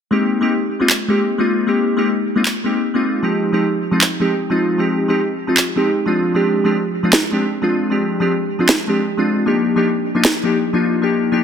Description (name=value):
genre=future bass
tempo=154 BPM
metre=4/4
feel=swing 54% on 16ths, half-time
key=Ab lydian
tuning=A4 = 445 Hz
part: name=glassy digital keys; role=accompaniment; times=0.1-11.4 s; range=F3 to G4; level=-16 LUFS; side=left 1 dB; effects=chorus, tape echo
part: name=electronic handclaps and snare drum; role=drums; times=0.9-10.3 s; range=none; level=-16 LUFS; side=right 1 dB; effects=none
room=moderate digital room reverb, RT60 1.2 s, digital ambience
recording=dense, heavily limited modern master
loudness=-15 LUFS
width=side -8 dB against mid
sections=0.1-11.4 A section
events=none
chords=0.1 Abmaj9; 3.2 Fm9; 6.2 Fm69; 9.5 Ebmaj7